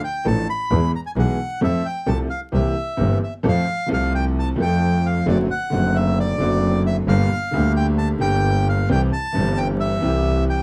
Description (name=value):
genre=tango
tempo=132 BPM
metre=4/4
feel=rubato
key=F major from 3.4 s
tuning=A4 = 441 Hz
part: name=bandoneon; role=melody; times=0.0-10.6 s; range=D5 to B5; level=-27 LUFS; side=equal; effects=none
part: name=warm baby grand piano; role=accompaniment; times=0.2-10.6 s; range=G1 to A4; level=-25 LUFS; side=equal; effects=none
part: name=clear double bass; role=bass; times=0.3-10.6 s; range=F#1 to F2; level=-23 LUFS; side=equal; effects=none
room=little or no reverb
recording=close, detailed microphones, vinyl crackle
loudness=-20 LUFS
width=mono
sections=0.0-3.4 A section; 3.4-10.6 B section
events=none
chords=0.0 Dm; 0.7 E; 1.6 F; 2.5 C7; 3.4 F; 5.3 D7/F#; 7.1 Gm; 8.9 C